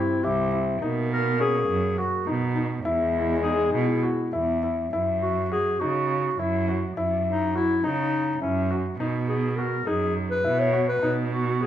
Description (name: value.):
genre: contemporary instrumental, chamber music in an uneven meter.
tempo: 206 BPM (eighths).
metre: 7/8.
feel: straight.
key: unclear.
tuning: A4 = 440 Hz.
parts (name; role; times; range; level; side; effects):
dark clarinet; melody; 0.0-11.7 s; C#4 to C#5; -26 LUFS; left 2 dB; none.
mellow French horn; second line; 0.0-4.6 s; G#3 to C4; -30 LUFS; left 4 dB; none.
warm baby grand piano; arpeggios; 0.0-11.7 s; C#4 to G4; -28 LUFS; left 3 dB; none.
warm cello; bass; 0.2-11.7 s; C2 to C#3; -27 LUFS; right 4 dB; none.
room: light reverb.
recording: none.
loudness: -22 LUFS.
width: side -11 dB against mid.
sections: 0.0-4.9 A section; 4.9-11.7 B section.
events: none.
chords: 0.0 C; 0.8 Badd9; 2.9 E; 4.9 F#5; 9.0 B.